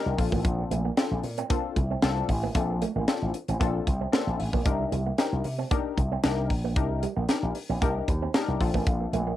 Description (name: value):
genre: early-eighties boogie funk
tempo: 114 BPM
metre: 4/4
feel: straight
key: unclear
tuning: A4 = 440 Hz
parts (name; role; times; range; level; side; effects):
- funky polysynth comp; accompaniment; 0.0-9.2 s; C4 to Bb4; -31 LUFS; left 8 dB; chorus, cassette tape
- electric guitar with an envelope filter; riff; 0.1-9.4 s; G3 to C4; -34 LUFS; right 10 dB; wide subtle chorus, cassette tape
- slap bass with an envelope filter; bass; 0.1-9.3 s; A1 to C3; -28 LUFS; equal; none
- tight funk drum kit; drums; 0.2-9.3 s; hi-hat, kick drum, snare drum; -27 LUFS; equal; none
room: light reverb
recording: home recording on cassette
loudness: -24 LUFS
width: side -13 dB against mid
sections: 0.0-9.4 A section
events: none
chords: 0.2 Bbmaj9; 4.7 Cm9; 8.6 Bbmaj9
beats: | 0.45 0.97 1.50 2.02 | 2.55 3.08 3.60 4.13 | 4.66 5.18 5.71 6.24 | 6.76 7.29 7.82 8.34 | 8.87